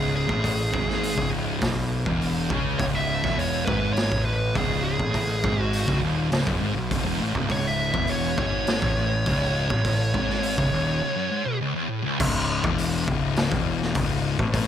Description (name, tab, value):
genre	stoner and doom metal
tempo	102 BPM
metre	4/4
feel	straight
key	C# minor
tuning	A4 = 441 Hz
part	fuzz lead guitar	melody	0.0-11.6 s	G#4 to E5	-28 LUFS	equal	distortion, tape echo
part	thick fuzz guitar	riff	0.0-14.7 s	C#2 to C#3	-28 LUFS	left 9 dB	distortion
part	thick fuzz guitar	riff	0.0-12.2 s	C#2 to C#3	-28 LUFS	right 8 dB	distortion
part	fuzz picked electric bass	bass	0.0-14.7 s	C#1 to C#2	-29 LUFS	equal	overdrive
part	raw garage drum kit	drums	0.3-14.7 s	crash cymbal, hi-hat, kick drum, snare drum	-28 LUFS	equal	none
room	little or no reverb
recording	none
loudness	-22 LUFS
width	side -10 dB against mid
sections	0.0-12.2 A section; 12.2-14.7 B section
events	break 11.0-12.2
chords	0.0 C#m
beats	| 0.43 1.02 1.61 2.20 | 2.79 3.38 3.97 4.56 | 5.15 5.74 6.32 6.91 | 7.50 8.09 8.68 9.27 | 9.85 10.44 11.03 11.61 | 12.20 12.79 13.37 13.95 | 14.54